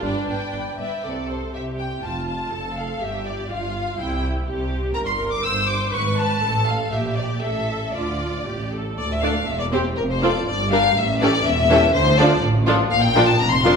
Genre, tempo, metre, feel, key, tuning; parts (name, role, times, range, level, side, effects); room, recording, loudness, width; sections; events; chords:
quick classical-period movement for string orchestra; 122 BPM; 2/4; straight; C major, D minor from 5.0 s; A4 = 440 Hz
rich chamber violin section; melody; 0.0-13.8 s; Bb4 to E6; -23 LUFS; left 4 dB
warm symphonic violin section; second line; 0.0-13.8 s; F4 to E6; -26 LUFS; left 1 dB
rich symphonic viola section; accompaniment; 0.0-13.8 s; E3 to C5; -25 LUFS; right 1 dB
bright symphonic double bass section; bass; 0.0-13.8 s; E1 to D2; -28 LUFS; right 2 dB
warm symphonic cello section; bass; 0.0-13.8 s; D2 to D3; -26 LUFS; right 2 dB
wet recital hall reverb, RT60 1.6 s; recorded in a church or concert hall; -19 LUFS; side -5 dB against mid
0.0-1.0 A section; 1.0-9.0 B section; 9.0-13.8 C section
0.0 G; 1.0 C5; 2.0 F; 3.0 Dmadd11/G; 4.0 C; 5.0 Gmadd11; 5.9 Amaj9/G#; 6.4 F/A; 6.9 Bb; 7.4 A5; 7.9 Dm; 9.5 C/E; 10.0 F; 10.5 Gm; 11.0 A7; 11.9 Dm; 12.9 Bb